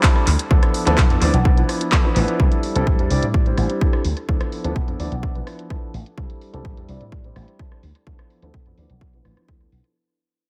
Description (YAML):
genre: filtered disco house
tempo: 127 BPM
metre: 4/4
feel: straight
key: D dorian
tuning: A4 = 439 Hz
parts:
  - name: bright concert grand piano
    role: accompaniment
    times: 0.0-9.7 s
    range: F3 to D5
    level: -26 LUFS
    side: equal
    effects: phaser, vintage 12-bit sampler grit, sidechain pumping, low-pass filter, analog delay
  - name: electronic kick drum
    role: drums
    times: 0.0-9.6 s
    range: none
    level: -21 LUFS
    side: equal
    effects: overdrive
  - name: house drum kit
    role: drums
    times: 0.0-9.9 s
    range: handclaps, hi-hat, rim click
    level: -28 LUFS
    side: equal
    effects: overdrive, low-pass filter on snare, sidechain pumping on hats, low-pass filter on hats, low-pass filter on room, analog delay
  - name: slap bass with an envelope filter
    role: bass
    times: 0.3-9.8 s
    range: A1 to A2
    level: -24 LUFS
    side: equal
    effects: sidechain pumping, low-pass filter
room: digital ambience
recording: echo-heavy mix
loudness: -19 LUFS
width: mono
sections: 0.0-10.0 A section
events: fade-out 0.0-10.0; filter sweep 0.0-10.0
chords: 0.3 Dm69; 2.4 C69; 4.0 Dm69; 6.2 C69; 7.8 Dm69